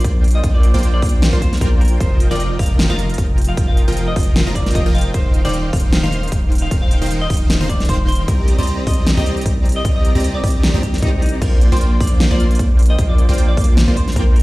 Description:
future bass; 153 BPM; 4/4; swing 55% on 16ths, half-time; Bb major; A4 = 440 Hz
supersaw stab; riff; 0.0-14.4 s; Eb3 to C6; -23 LUFS; right 1 dB; sidechain pumping
long sustained 808-style bass; bass; 0.0-14.4 s; Eb1 to C2; -17 LUFS; equal; tube saturation, sidechain pumping
big-room dance drum kit; drums; 0.0-14.4 s; crash cymbal, hi-hat, snare drum; -23 LUFS; equal
electronic kick drum; drums; 0.0-14.2 s; -16 LUFS; equal
semi-hollow electric guitar; melody; 0.3-14.4 s; Eb4 to F5; -27 LUFS; left 1 dB; sidechain pumping, dub echo
little or no reverb; played on a big sound system in a bare room, large studio reverb; -13 LUFS; side -20 dB against mid
0.0-14.4 A section
0.0 Bb6; 2.0 F7sus4; 5.1 Eb69; 8.3 Cm7; 11.4 Bb6

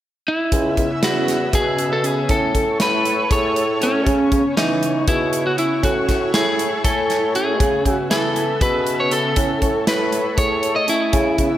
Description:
progressive instrumental, band music in an uneven meter; 237 BPM (eighths); 7/8; straight; C# minor; A4 = 440 Hz
lightly driven lead guitar; melody; 0.3-11.6 s; C#4 to D#5; -20 LUFS; equal; tape echo
analog string pad; accompaniment; 0.6-11.6 s; C#3 to E5; -26 LUFS; left 1 dB; ensemble chorus, slapback echo
overdriven tine electric piano; arpeggios; 0.5-11.5 s; E3 to G#5; -27 LUFS; right 4 dB; fast tremolo, tape echo
mellow bassoon; bass; 0.5-11.5 s; C#2 to E3; -23 LUFS; equal
modern studio drum kit; drums; 0.5-11.5 s; hi-hat, kick drum, snare drum; -22 LUFS; equal
moderate concert hall reverb, RT60 1.9 s, studio ambience; big arena sound; -16 LUFS; side -12 dB against mid
0.5-11.6 A section
0.0 N.C.; 0.5 C#m7; 2.3 Amaj7; 4.1 C#m7; 5.8 Amaj7; 7.6 C#m7; 9.4 Amaj7

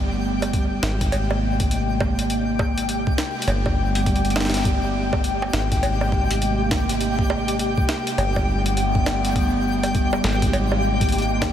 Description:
IDM; 102 BPM; 4/4; swing 62% on 16ths; A4 = 440 Hz
warbly tape-like pad; sustained chords; 0.0-11.5 s; C3 to G5; -24 LUFS; left 1 dB; chorus, built-in reverb
deep acid bass; bass; 0.0-11.5 s; G1 to Ab1; -25 LUFS; equal; tube saturation
twinkling granular texture; texture; 0.0-11.5 s; G4 to G5; -29 LUFS; equal; built-in reverb
jungle sampler-style drum kit; drums; 0.4-11.5 s; bongos, cowbell, hi-hat, snare drum; -27 LUFS; right 1 dB; studio reverb, diffuse ambient delay
electronic kick drum; drums; 0.5-11.5 s; -23 LUFS; equal; studio reverb
moderate huge ambient reverb, RT60 7.5 s; dreamy mix soaked in reverb; -19 LUFS; side -10 dB against mid
0.0-11.5 A section
0.0 Gadd9; 0.8 Abmaj9; 3.5 Gadd9; 5.5 Abmaj9; 8.2 Gadd9; 10.2 Abmaj9

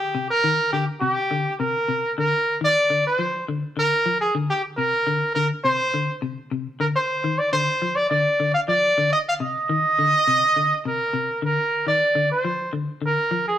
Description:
afrobeat; 104 BPM; 4/4; straight; A4 = 440 Hz
clear trumpet; melody; 0.0-13.6 s; G4 to F5; -20 LUFS; right 1 dB
clean electric guitar; arpeggios; 0.1-13.5 s; C3 to F3; -27 LUFS; left 4 dB
moderate stone room reverb, RT60 1.2 s; rough rehearsal-room recording; -19 LUFS; side -11 dB against mid
0.0-13.6 A section
0.0 C7sus2; 2.2 Dm; 4.5 Csus2; 6.8 Dm7; 9.1 Cm9; 11.4 Dm

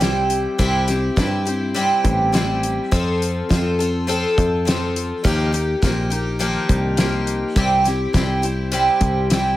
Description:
folk rock and heartland rock; 103 BPM; 4/4; straight; C mixolydian; A4 = 439 Hz
picked twelve-string acoustic guitar; accompaniment; 0.0-9.6 s; C3 to A4; -20 LUFS; equal
picked electric bass; bass; 0.0-9.6 s; A1 to G2; -22 LUFS; equal
damped 70s drum kit; drums; 0.0-9.5 s; hi-hat, kick drum, snare drum; -21 LUFS; equal
light reverb, studio reverb; -17 LUFS; side -15 dB against mid
0.0-9.6 A section
0.0 C; 2.9 F; 5.2 Ebadd9; 7.6 C

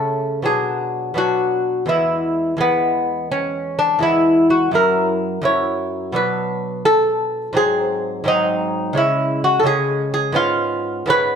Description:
classical, baroque-style dance for lute; 85 BPM (dotted quarters); 12/8; rubato; A4 = 440 Hz
lute; solo; 0.0-11.4 s; E2 to C#5; -16 LUFS; equal
moderate recital hall reverb, RT60 1.4 s; close, detailed microphones; -16 LUFS; side -7 dB against mid
0.0-11.4 A section
0.5 Bm; 1.9 E; 4.7 F#7; 6.2 Bm; 7.6 G#7; 9.0 C#m; 10.4 C#7/G#

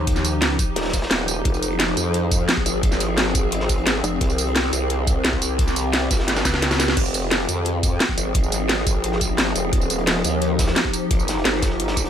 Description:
dark technical drum and bass; 174 BPM; 4/4; straight; F minor; A4 = 439 Hz
swarming drone; sustained chords; 0.0-12.1 s; Eb3 to Ab4; -26 LUFS; left 1 dB; built-in reverb, sidechain pumping
pulsing pluck wobble bass; bass; 0.0-0.6, 4.0-4.2, 6.5-7.0 s; F1 to Eb2; -22 LUFS; equal; chorus
crunchy breakbeat drum kit; drums; 0.1-12.1 s; hi-hat, snare drum; -32 LUFS; equal
drum and bass drum kit; drums; 0.1-12.0 s; crash cymbal, hi-hat, snare drum, tambourine; -22 LUFS; right 1 dB
electronic kick drum; drums; 0.1-12.0 s; -22 LUFS; equal
growl bass; bass; 0.8-12.1 s; Eb1 to F2; -24 LUFS; equal; chorus, sidechain pumping
digital ambience; -18 LUFS; side -9 dB against mid
0.0-7.0 A section; 7.0-12.1 A section
drop 0.0-7.0, 7.0-12.1; drum fill 6.3-7.0
0.0 Ebadd9; 1.5 Fm; 4.2 Cm; 7.0 Fm; 9.7 Ebadd9

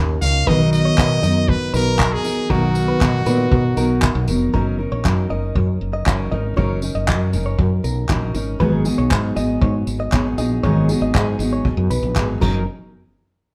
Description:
acoustic pop; 118 BPM; 4/4; straight; F# major; A4 = 440 Hz
fingerpicked steel-string acoustic guitar; accompaniment; 0.0-12.6 s; G#2 to A#4; -23 LUFS; equal
woody fretless electric bass; bass; 0.0-12.7 s; E#1 to B2; -23 LUFS; equal
brilliant trumpet; melody; 0.2-4.3 s; F#4 to E#5; -25 LUFS; equal
vintage brush drum kit; drums; 0.2-12.5 s; crash cymbal, handclaps, kick drum, tambourine; -24 LUFS; equal
direct-recorded clean electric guitar; arpeggios; 0.5-12.7 s; A#4 to D#5; -30 LUFS; equal
wet large studio reverb, RT60 0.9 s; band playing live in one room; -18 LUFS; mono
0.0-4.5 A section; 4.5-12.7 B section
0.5 Bmaj7; 4.5 F#6; 8.6 G#m7; 12.4 F#6; 12.7 N.C.

